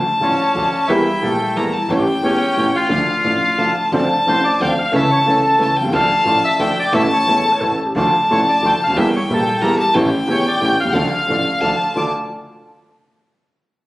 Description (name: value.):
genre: tango.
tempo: 179 BPM.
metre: 3/4.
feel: rubato.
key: D harmonic minor.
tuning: A4 = 441 Hz.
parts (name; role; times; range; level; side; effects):
clear violin; second line; 0.0-12.1 s; F5 to Bb5; -18 LUFS; left 1 dB; none.
bandoneon; melody; 0.2-12.1 s; A3 to G6; -20 LUFS; equal; none.
warm upright piano; accompaniment; 0.2-12.1 s; E1 to A4; -18 LUFS; right 1 dB; none.
bandoneon; stabs; 0.2-12.1 s; A3 to G4; -28 LUFS; equal; none.
upright bass; bass; 0.2-12.1 s; E1 to E2; -31 LUFS; equal; none.
mellow clarinet; second line; 1.6-2.1, 7.4-12.1 s; E4 to C#5; -27 LUFS; left 1 dB; none.
room: wet recital hall reverb, RT60 1.4 s.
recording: recorded on a phone in the room, club reverb.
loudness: -14 LUFS.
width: side -17 dB against mid.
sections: 0.0-3.9 A section; 3.9-12.0 A section.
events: none.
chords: 0.0 Dm; 0.9 Edim; 1.9 A7; 2.9 Dm; 3.9 Dm7; 4.9 A/C#; 5.9 Dm; 6.9 A; 7.9 Dm; 9.0 Edim; 10.0 A7; 10.9 Dm.